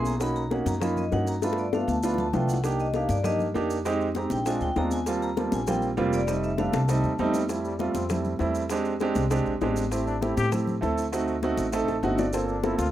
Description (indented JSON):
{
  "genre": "Afro-Cuban jazz",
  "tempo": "198 BPM",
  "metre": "4/4",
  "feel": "straight",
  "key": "F major from 7.5 s",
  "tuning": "A4 = 441 Hz",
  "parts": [
    { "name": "vibraphone with medium hard mallets", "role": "melody", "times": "0.0-7.4 s", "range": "D5 to B5", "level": "-32 LUFS", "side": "left 3 dB", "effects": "none" },
    { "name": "warm grand piano", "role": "accompaniment", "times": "0.0-12.9 s", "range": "G3 to A5", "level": "-26 LUFS", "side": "right 3 dB", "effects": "none" },
    { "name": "upright bass", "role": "bass", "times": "0.0-12.9 s", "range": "F1 to A2", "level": "-30 LUFS", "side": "equal", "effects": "none" },
    { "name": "congas", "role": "percussion", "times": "0.0-12.9 s", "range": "none", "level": "-33 LUFS", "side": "left 3 dB", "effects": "none" },
    { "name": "bongos", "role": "percussion", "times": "0.1-12.9 s", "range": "none", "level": "-34 LUFS", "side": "left 8 dB", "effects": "none" },
    { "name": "maracas", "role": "percussion", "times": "0.1-12.9 s", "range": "none", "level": "-44 LUFS", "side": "right 4 dB", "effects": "none" },
    { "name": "bright trombone", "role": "second line", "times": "7.5-12.9 s", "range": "F3 to G4", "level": "-32 LUFS", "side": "left 5 dB", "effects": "none" }
  ],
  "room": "little or no reverb",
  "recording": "rough home demo mix",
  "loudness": "-24 LUFS",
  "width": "side -12 dB against mid",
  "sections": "0.0-7.5 A section; 7.5-12.9 A section",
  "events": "vibraphone solo 0.0-7.5; drum fill 1.4-2.6, 6.6-7.5, 11.9-12.3; trombone solo 7.5-12.9; grand piano fill 11.7-12.3",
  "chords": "0.2 Bmaj7; 1.4 G7; 2.6 Cm7; 3.9 Fm7; 4.5 Bb7; 5.1 Eb69; 6.3 F7; 7.5 Fmaj9; 8.7 E7alt; 9.9 Am7; 11.1 D7b9; 12.3 Gm11"
}